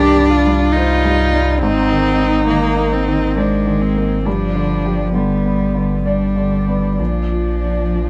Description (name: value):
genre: neoclassical piano and strings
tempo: 62-69 BPM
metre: 3/4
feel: rubato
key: unclear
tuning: A4 = 440 Hz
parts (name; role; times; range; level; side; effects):
- rich cello; second line; 0.0-8.1 s; F3 to Eb4; -20 LUFS; equal; none
- clear upright piano; accompaniment; 0.0-8.1 s; C2 to D5; -23 LUFS; equal; none
- warm viola; accompaniment; 0.0-8.1 s; B3 to G4; -24 LUFS; equal; none
- warm sub bass; bass; 0.0-8.1 s; G1 to C2; -23 LUFS; equal; none
room: light reverb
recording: dark, warm production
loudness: -16 LUFS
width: mono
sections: 0.0-8.1 A section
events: none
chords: 0.0 Cmadd9; 1.6 Abadd9; 4.3 G; 7.0 Bb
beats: 0.73 | 1.61 2.49 3.37 | 4.26 5.14 6.05 | 6.99 7.95